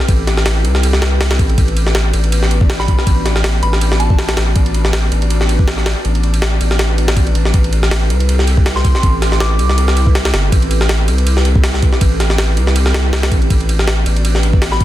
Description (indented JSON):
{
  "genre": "drum and bass, jungle",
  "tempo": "161 BPM",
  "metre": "4/4",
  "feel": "swing 55% on 16ths",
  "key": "A dorian",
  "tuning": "A4 = 440 Hz",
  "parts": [
    { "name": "airy breathy pad", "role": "sustained chords", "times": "0.0-14.8 s", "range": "B3 to D5", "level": "-23 LUFS", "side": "right 1 dB", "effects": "chorus" },
    { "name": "jungle sampler-style drum kit", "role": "drums", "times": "0.0-14.8 s", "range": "kick drum, ride cymbal, snare drum", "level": "-15 LUFS", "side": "equal", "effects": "none" },
    { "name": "saturated sub bass", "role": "bass", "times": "0.1-14.8 s", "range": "G1 to C2", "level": "-14 LUFS", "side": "equal", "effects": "none" },
    { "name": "soft synth bell", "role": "melody", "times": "2.8-4.3, 8.8-9.9, 14.7-14.8 s", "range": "A5 to D6", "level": "-24 LUFS", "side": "right 1 dB", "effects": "chorus, dub echo" }
  ],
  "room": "digital ambience",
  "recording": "dense, heavily limited modern master",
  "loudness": "-11 LUFS",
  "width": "side -14 dB against mid",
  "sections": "0.0-14.8 A section",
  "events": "none",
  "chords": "0.0 Am9; 1.6 Bm/A; 7.5 Am9; 13.5 Bm/A"
}